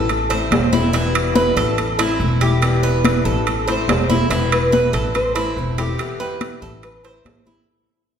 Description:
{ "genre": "latin, Cuban son and guajira", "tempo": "142 BPM", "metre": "4/4", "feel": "straight", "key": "unclear", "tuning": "A4 = 439 Hz", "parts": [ { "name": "picked steel-string acoustic guitar", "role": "accompaniment", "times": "0.0-7.7 s", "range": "B2 to E4", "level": "-24 LUFS", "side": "left 5 dB", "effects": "none" }, { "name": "Cuban tres", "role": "arpeggios", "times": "0.0-7.7 s", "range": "E4 to C5", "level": "-23 LUFS", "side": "right 2 dB", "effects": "none" }, { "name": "upright bass", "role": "bass", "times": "0.0-7.6 s", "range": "E1 to A1", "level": "-21 LUFS", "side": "equal", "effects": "none" }, { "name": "congas", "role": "percussion", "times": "0.1-7.7 s", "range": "none", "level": "-22 LUFS", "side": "left 2 dB", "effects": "none" }, { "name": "timbales", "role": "percussion", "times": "0.1-7.5 s", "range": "none", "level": "-24 LUFS", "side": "right 5 dB", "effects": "none" }, { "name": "nylon-string guitar", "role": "melody", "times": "4.5-7.6 s", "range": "G4 to C5", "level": "-22 LUFS", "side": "equal", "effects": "none" } ], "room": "wet scoring stage reverb, RT60 1.7 s", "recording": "recorded in a church or concert hall", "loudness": "-15 LUFS", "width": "side -8 dB against mid", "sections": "0.0-4.3 A section; 4.3-7.7 B section", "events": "fade-out 4.3-7.7", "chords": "0.1 Am; 0.9 Em; 1.8 Am; 2.6 Em; 3.5 Am; 4.3 Em; 5.1 Am; 6.0 Em; 6.8 Am" }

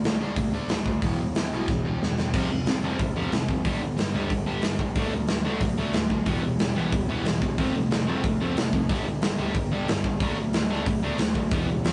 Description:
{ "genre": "punk rock", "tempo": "183 BPM", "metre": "4/4", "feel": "straight", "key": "unclear", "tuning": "A4 = 440 Hz", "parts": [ { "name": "sludgy distorted guitar", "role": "riff", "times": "0.0-11.9 s", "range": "E2 to D4", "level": "-31 LUFS", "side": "equal", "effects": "overdrive" }, { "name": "big rock drum kit", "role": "drums", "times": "0.0-11.9 s", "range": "crash cymbal, hi-hat, kick drum, snare drum", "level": "-29 LUFS", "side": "equal", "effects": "none" }, { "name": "growling picked electric bass", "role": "bass", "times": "0.1-11.9 s", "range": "E1 to D2", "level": "-36 LUFS", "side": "equal", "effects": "overdrive" }, { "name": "distorted electric guitar", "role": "riff", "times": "2.3-11.9 s", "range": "F2 to C4", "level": "-32 LUFS", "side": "equal", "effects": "overdrive" } ], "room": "light reverb", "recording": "rough rehearsal-room recording, nothing above 10.4 kHz", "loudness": "-26 LUFS", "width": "mono", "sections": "0.0-11.9 A section", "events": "drum fill 1.7-2.3", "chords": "0.0 D5; 1.0 E5; 2.3 F5; 3.6 G5; 5.0 D; 6.3 Em; 7.6 F; 8.9 G5; 10.2 D" }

